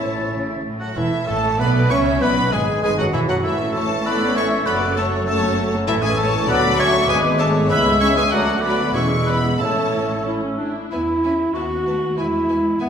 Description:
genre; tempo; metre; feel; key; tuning
quick classical-period movement for symphony orchestra; 97 BPM; 2/4; rubato; A major; A4 = 440 Hz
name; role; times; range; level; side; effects
rich studio violin section; melody; 0.0-12.9 s; E5 to C#6; -25 LUFS; left 2 dB; none
mellow clarinet; second line; 0.0-12.9 s; B3 to D5; -25 LUFS; equal; none
mellow flute section; second line; 0.0-10.6 s; E5 to A6; -26 LUFS; left 1 dB; none
warm oboe; second line; 0.0-10.2 s; E4 to E5; -26 LUFS; equal; none
warm studio violin section; second line; 0.0-12.9 s; G#4 to E5; -28 LUFS; left 1 dB; none
mellow bassoon; accompaniment; 0.0-10.6 s; E3 to C#4; -26 LUFS; equal; none
warm studio viola section; accompaniment; 0.0-12.9 s; E3 to C#5; -26 LUFS; right 2 dB; none
warm French horn section; sustained chords; 0.0-10.2 s; E3 to C#4; -26 LUFS; left 2 dB; none
rich studio cello section; bass; 0.0-12.9 s; C#2 to C#4; -27 LUFS; right 1 dB; none
warm studio double bass section; bass; 0.0-12.9 s; E1 to E2; -26 LUFS; right 2 dB; none
room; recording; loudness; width
wet recital hall reverb, RT60 1.6 s; recorded in a church or concert hall; -16 LUFS; side -7 dB against mid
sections
1.0-10.9 A section; 10.9-12.9 B section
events
none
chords
0.0 A; 2.2 E; 3.4 A; 4.7 F#m; 5.9 A; 6.5 Dmaj7; 7.1 G#dim; 7.7 C#m7; 8.3 D; 8.9 E; 9.6 A; 10.9 E; 11.5 B7/D#; 12.2 E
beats
0.30 | 0.96 1.59 | 2.21 2.82 | 3.44 4.05 | 4.66 5.26 | 5.87 6.48 | 7.09 7.70 | 8.32 8.95 | 9.60 10.26 | 10.91 11.54 | 12.17 12.79

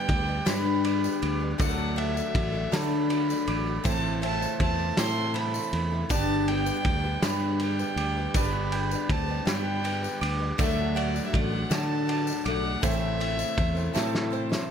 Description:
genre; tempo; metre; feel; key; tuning
indie folk with a building arrangement; 54 BPM (dotted quarters); 6/8; straight; G major; A4 = 444 Hz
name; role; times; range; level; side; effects
warm fiddle; melody; 0.0-14.3 s; D5 to C6; -32 LUFS; right 2 dB; none
oud; second line; 0.0-14.3 s; F#3 to E4; -32 LUFS; left 7 dB; none
bright concert grand piano; accompaniment; 0.0-14.7 s; G1 to E5; -36 LUFS; right 7 dB; none
picked twelve-string acoustic guitar; accompaniment; 0.0-14.7 s; A2 to B4; -37 LUFS; left 6 dB; none
mellow tonewheel organ; sustained chords; 0.0-14.7 s; A2 to B4; -39 LUFS; right 2 dB; none
bowl-back mandolin; arpeggios; 0.0-14.7 s; C5 to D6; -37 LUFS; right 6 dB; digital delay
fingered electric bass; bass; 0.1-14.6 s; G1 to D3; -30 LUFS; equal; none
loose indie drum kit; drums; 0.1-14.7 s; kick drum, ride cymbal, snare drum; -31 LUFS; equal; none
tambourine; percussion; 0.5-14.7 s; none; -40 LUFS; left 8 dB; none
room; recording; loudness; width
light reverb; none; -24 LUFS; side -8 dB against mid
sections
0.0-14.7 A section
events
drum fill 13.9-14.7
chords
0.0 G; 1.6 D; 3.9 Am; 6.1 G; 10.6 D; 12.8 Am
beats
0.47 | 1.60 2.73 | 3.85 4.98 | 6.10 7.22 | 8.35 9.46 | 10.59 11.71 | 12.82 13.95

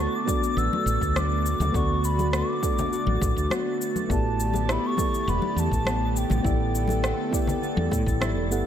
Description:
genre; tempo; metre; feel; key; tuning
sunset chillout; 102 BPM; 4/4; straight; D major; A4 = 439 Hz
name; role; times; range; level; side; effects
mellow baroque flute; melody; 0.0-8.2 s; G5 to E6; -30 LUFS; left 1 dB; vintage 12-bit sampler grit, digital delay
mellow FM electric piano; accompaniment; 0.0-8.7 s; B3 to F#5; -31 LUFS; moving between left 3 dB and right 3 dB; chorus, auto-pan, tape echo
airy breathy pad; sustained chords; 0.0-8.7 s; D3 to A4; -30 LUFS; right 1 dB; chorus
concert harp; arpeggios; 0.0-8.7 s; B3 to F#4; -35 LUFS; left 1 dB; tape echo
woody fretless electric bass; bass; 0.0-8.6 s; E1 to A2; -26 LUFS; equal; none
twinkling granular texture; texture; 0.0-8.7 s; A6; -39 LUFS; right 2 dB; built-in reverb
electronic cabasa and rim click; drums; 0.3-8.6 s; none; -32 LUFS; equal; overdrive
electronic kick drum; drums; 0.3-8.2 s; none; -28 LUFS; equal; overdrive
congas and bongos; percussion; 0.3-8.6 s; none; -34 LUFS; left 4 dB; none
room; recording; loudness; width
light reverb, digital ambience; none; -22 LUFS; side -10 dB against mid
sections
0.0-8.7 A section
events
none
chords
0.0 D6; 4.1 A9sus4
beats
0.57 1.15 | 1.74 2.33 2.92 3.51 | 4.09 4.68 5.27 5.86 | 6.45 7.04 7.62 8.21

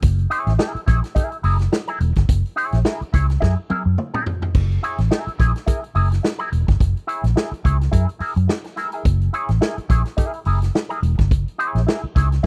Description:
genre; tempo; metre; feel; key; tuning
funk; 106 BPM; 4/4; swing 56% on 16ths; F# mixolydian; A4 = 435 Hz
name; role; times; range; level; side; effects
vintage muted fingered electric bass; bass; 0.0-12.5 s; E1 to F#2; -20 LUFS; equal; none
swinging big-band drum kit; drums; 0.0-12.5 s; crash cymbal, hi-hat, kick drum, snare drum, toms; -22 LUFS; equal; none
electric guitar with an envelope filter; accompaniment; 0.3-12.5 s; E4 to C#5; -27 LUFS; equal; wah
room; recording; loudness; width
studio reverb; dry, close 1970s-style studio recording; -20 LUFS; mono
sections
0.0-12.5 A section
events
drum fill 3.4-4.5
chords
0.0 F#9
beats
| 0.03 0.60 1.16 1.73 | 2.29 2.85 3.42 3.98 | 4.55 5.11 5.67 6.24 | 6.80 7.37 7.93 8.49 | 9.06 9.62 10.18 10.75 | 11.31 11.88 12.44

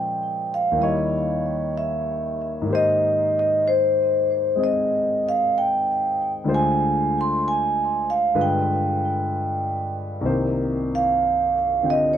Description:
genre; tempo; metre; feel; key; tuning
jazz ballad; 63 BPM; 4/4; swing 69% on 8ths; unclear; A4 = 440 Hz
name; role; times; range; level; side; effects
vibraphone with medium mallets; melody; 0.0-12.2 s; C5 to C6; -21 LUFS; right 1 dB; tape echo
warm grand piano; accompaniment; 0.0-12.2 s; C2 to G5; -25 LUFS; left 2 dB; none
room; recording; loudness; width
light reverb; dry, close 1970s-style studio recording; -19 LUFS; side -10 dB against mid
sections
0.0-12.2 A section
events
none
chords
0.0 Bbm7; 0.8 Eb7b9; 2.7 Abmaj9; 6.5 Dm7b5; 8.3 G7b9; 10.2 Cm9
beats
0.76 1.71 | 2.67 3.62 4.57 5.51 | 6.46 7.40 8.35 9.29 | 10.24 11.18 12.13

